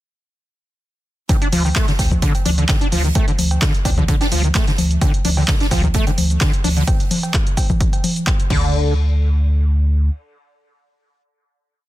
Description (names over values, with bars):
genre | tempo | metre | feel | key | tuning
acid house | 129 BPM | 4/4 | swing 53% on 16ths | D phrygian | A4 = 437 Hz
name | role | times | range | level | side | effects
overdriven acid bass | riff | 1.3-8.9 s | D3 to D4 | -22 LUFS | equal | distortion, ensemble chorus, dub echo
electronic kick drum | drums | 1.3-8.6 s | none | -18 LUFS | equal | none
punchy analog drum machine | drums | 1.3-8.6 s | cabasa, congas, cowbell, crash cymbal, handclaps, hi-hat | -22 LUFS | equal | none
swinging big-band drum kit | drums | 1.3-6.8 s | hi-hat, snare drum | -30 LUFS | right 2 dB | high-pass filter on hats, high-pass filter on snare, high-pass filter on room
warm sub bass | bass | 1.5-10.1 s | D2 | -17 LUFS | equal | sidechain pumping
room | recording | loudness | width
little or no reverb | dense, heavily limited modern master | -15 LUFS | side -16 dB against mid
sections
1.3-8.7 drop; 8.7-11.9 final hit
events
drop 1.3-8.7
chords
none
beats
| 1.29 1.76 2.22 2.69 | 3.15 3.62 4.08 4.55 | 5.01 5.48 5.95 6.41 | 6.88 7.34 7.80 8.27 | 8.74 9.20 9.67